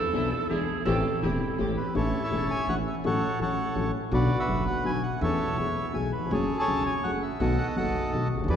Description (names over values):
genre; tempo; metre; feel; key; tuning
tango; 165 BPM; 3/4; rubato; A major; A4 = 441 Hz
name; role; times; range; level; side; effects
bright clarinet; second line; 0.0-1.9 s; E4 to A4; -33 LUFS; right 4 dB; none
dark upright piano; accompaniment; 0.1-8.6 s; E1 to A4; -28 LUFS; left 2 dB; none
rich chamber string section; stabs; 0.1-1.7 s; G#3 to G4; -41 LUFS; right 1 dB; none
upright bass; bass; 0.1-8.6 s; E1 to E2; -32 LUFS; right 1 dB; none
bandoneon; melody; 1.8-8.6 s; E4 to A5; -29 LUFS; right 1 dB; none
room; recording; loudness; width
wet cathedral reverb, RT60 5.4 s; recorded in a church or concert hall; -25 LUFS; side -8 dB against mid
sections
0.0-2.0 A section; 2.0-8.6 B section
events
none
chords
0.5 E7; 0.9 Am7; 2.0 A; 3.0 F#m/A; 4.1 Bm; 5.2 A/E; 5.6 E; 6.3 F#madd9; 7.4 B7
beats
0.14 0.50 | 0.86 1.22 1.59 | 1.96 2.32 2.68 | 3.05 3.41 3.77 | 4.13 4.49 4.85 | 5.21 5.58 5.95 | 6.32 6.68 7.04 | 7.41 7.77 8.13 | 8.50